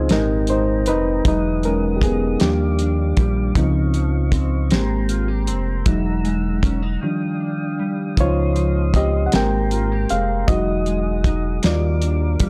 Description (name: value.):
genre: slow six-eight R&B.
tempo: 52 BPM (dotted quarters).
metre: 6/8.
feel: straight.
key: Db lydian.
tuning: A4 = 441 Hz.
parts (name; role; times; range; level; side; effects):
mellow electric guitar; second line; 0.0-12.5 s; Db3 to G4; -28 LUFS; equal; analog chorus.
bright reed electric piano; accompaniment; 0.0-12.5 s; Bb2 to G5; -24 LUFS; equal; none.
tonewheel organ; sustained chords; 0.0-12.5 s; G3 to E6; -36 LUFS; equal; overdrive, slow rotary speaker.
round analog bass; bass; 0.0-12.5 s; E1 to Eb2; -24 LUFS; equal; none.
cloth-damped thuddy drum kit; drums; 0.1-12.5 s; hi-hat, kick drum, snare drum; -22 LUFS; equal; none.
room: little or no reverb.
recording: dry, gritty hardware recording.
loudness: -20 LUFS.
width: mono.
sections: 0.0-12.5 A section.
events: reed electric piano solo 0.0-12.5; break 7.0-8.2.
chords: 0.1 Abmaj9; 1.2 Emaj9; 2.4 Ebmaj9; 3.6 Dbmaj9; 4.7 Abmaj9; 5.9 Emaj9; 7.0 Ebmaj9; 8.2 Dbmaj9; 9.3 Abmaj9; 10.5 Emaj9; 11.6 Ebmaj9.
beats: 0.09 | 1.25 2.40 | 3.56 4.71 | 5.86 7.02 | 8.17 9.32 | 10.48 11.63.